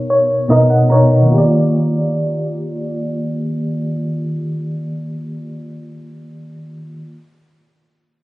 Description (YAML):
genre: R&B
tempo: 75 BPM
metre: 4/4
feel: straight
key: Eb major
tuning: A4 = 441 Hz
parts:
  - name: FM electric piano with tremolo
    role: accompaniment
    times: 0.0-7.0 s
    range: B2 to A#5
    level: -15 LUFS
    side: equal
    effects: low-pass filter
room: light reverb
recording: recorded on a phone in the room, club reverb, compression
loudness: -14 LUFS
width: side -18 dB against mid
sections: 0.0-1.3 A section; 1.3-4.5 B section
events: FM electric piano fill 0.0-1.3; filter sweep on FM electric piano 0.0-1.3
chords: 0.0 Bmaj9; 1.3 Ebmaj9